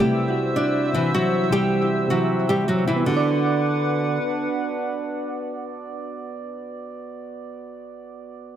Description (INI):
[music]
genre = hip hop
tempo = 156 BPM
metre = 4/4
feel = half-time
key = B phrygian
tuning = A4 = 440 Hz
[part]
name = nylon-string guitar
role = melody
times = 0.0-4.2 s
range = D3 to D5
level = -22 LUFS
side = equal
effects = tape echo
[part]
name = soft electric-piano-like synth keys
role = accompaniment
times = 0.0-8.6 s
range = C3 to D5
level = -26 LUFS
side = right 2 dB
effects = chorus, tape echo
[part]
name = hollow soft pad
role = sustained chords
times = 0.0-6.9 s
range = D4 to E6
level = -28 LUFS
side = equal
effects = chorus
[sound]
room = moderate spring reverb, RT60 1.8 s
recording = echo-heavy mix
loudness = -20 LUFS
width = side -10 dB against mid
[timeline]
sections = 0.0-3.1 A section; 3.1-6.1 B section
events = none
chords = 0.0 C; 3.1 Bm